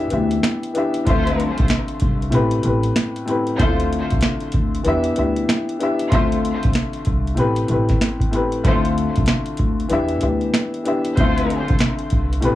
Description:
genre	hip hop, boom-bap hip-hop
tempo	95 BPM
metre	4/4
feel	swing 62% on 16ths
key	D dorian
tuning	A4 = 440 Hz
part	dark upright piano	accompaniment	0.0-12.6 s	A2 to E5	-21 LUFS	left 2 dB	high-pass filter, low-pass filter
part	upright bass	bass	0.0-12.6 s	A1 to E2	-22 LUFS	equal	none
part	booming analog drum machine	drums	0.1-12.6 s	hi-hat, kick drum, snare drum	-21 LUFS	equal	none
part	rich studio string section	stabs	1.1-11.6 s	A3 to C5	-27 LUFS	right 1 dB	high-pass filter, low-pass filter, digital delay
room	light reverb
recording	worn, warbling old tape, cassette tape, warbly pitch drift, small room ambience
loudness	-17 LUFS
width	side -14 dB against mid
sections	0.0-8.6 A section; 8.6-12.6 A section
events	none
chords	0.0 Em7; 1.1 Dm7; 2.3 Am7; 3.6 Dm7; 4.9 Em7; 6.1 Dm7; 7.4 Am7; 8.6 Dm7; 9.9 Em7; 11.2 Dm7

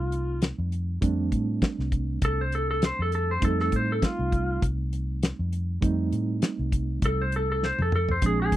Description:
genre	straight-eighth soul blues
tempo	100 BPM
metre	4/4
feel	swing 55% on 16ths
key	F mixolydian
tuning	A4 = 440 Hz
part	clean lap steel guitar	melody	0.0-8.5 s	F4 to C5	-28 LUFS	left 1 dB	none
part	mellow reed electric piano	accompaniment	0.0-8.6 s	F3 to Eb4	-31 LUFS	right 5 dB	fast tremolo
part	vintage muted fingered electric bass	bass	0.0-8.6 s	Bb1 to A2	-28 LUFS	equal	none
part	damped 70s drum kit	drums	0.1-8.6 s	hi-hat, kick drum, snare drum, toms	-26 LUFS	equal	none
room	little or no reverb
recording	dry, close 1970s-style studio recording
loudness	-24 LUFS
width	side -14 dB against mid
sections	0.0-8.6 A section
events	electric slide guitar solo 0.0-8.6; drum fill 7.6-8.2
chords	0.0 F9

